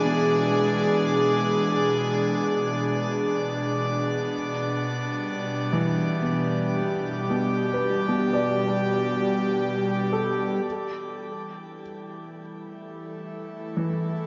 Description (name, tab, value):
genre	ambient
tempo	76 BPM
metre	4/4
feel	straight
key	unclear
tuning	A4 = 439 Hz
part	airy breathy pad	sustained chords	0.0-14.3 s	B2 to A4	-27 LUFS	equal	chorus, shimmer reverb
part	felt-muted upright piano	arpeggios	0.0-14.3 s	B2 to G#5	-32 LUFS	equal	analog delay, shimmer reverb
part	drifting glass-harmonics texture	texture	0.0-10.7 s	D5 to D6	-36 LUFS	equal	chorus, built-in reverb, shimmer reverb
part	analog drone	drone	12.3-14.3 s	A3 to E4	-47 LUFS	equal	chorus
room	wet spring reverb, RT60 2.4 s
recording	echo-heavy mix, nothing above 7.5 kHz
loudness	-25 LUFS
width	mono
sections	0.0-10.6 A section; 10.6-14.3 B section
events	fade-in on analog synth pad 10.6-14.3; fade-in on synth drone 10.6-14.3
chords	0.0 E7; 4.3 G; 10.6 A7(no3)